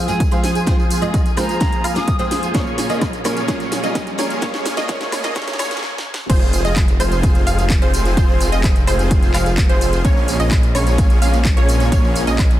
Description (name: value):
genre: EDM, festival progressive house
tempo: 128 BPM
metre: 4/4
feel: straight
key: Bb minor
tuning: A4 = 440 Hz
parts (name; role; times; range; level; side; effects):
- rich symphonic string section; sustained chords; 0.0-12.6 s; F2 to Ab4; -27 LUFS; equal; sidechain pumping
- wide unison pluck; arpeggios; 0.0-12.4 s; C5 to F5; -26 LUFS; right 2 dB; sidechain pumping, dub echo
- dense compressed supersaw; riff; 0.0-12.4 s; Bb3 to F5; -23 LUFS; right 1 dB; sidechain pumping, low-pass filter, dub echo
- riser; sound effects; 1.3-5.8 s; none; -33 LUFS; right 1 dB; none
- bright concert flute; melody; 0.1-2.4 s; F5 to Eb6; -27 LUFS; equal; dub echo
- picked steel-string acoustic guitar; accompaniment; 0.1-5.7 s; Bb2 to Bb4; -28 LUFS; equal; sidechain pumping, dub echo
- house drum kit; drums; 0.1-12.6 s; crash cymbal, handclaps, hi-hat, snare drum, tambourine, woodblock; -25 LUFS; equal; overdrive
- electronic kick drum; drums; 0.2-12.5 s; none; -17 LUFS; equal; overdrive
- detuned saw bass; bass; 6.3-12.6 s; F1 to Bb1; -19 LUFS; equal; sidechain pumping
room: light reverb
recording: dense, heavily limited modern master, high-pass filter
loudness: -14 LUFS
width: side -13 dB against mid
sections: 0.0-6.3 A section; 6.3-12.6 B section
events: build-up 0.0-6.3; drum fill 0.0-5.8, 5.8-6.3; filter sweep on supersaw synth 0.0-6.3; filter sweep on synth pluck 0.0-6.3; filter sweep 0.0-6.3; stop 5.8-6.3; drop 6.3-12.6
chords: 0.0 Fm; 2.5 Bbm7; 6.3 Fm; 10.0 Bbm7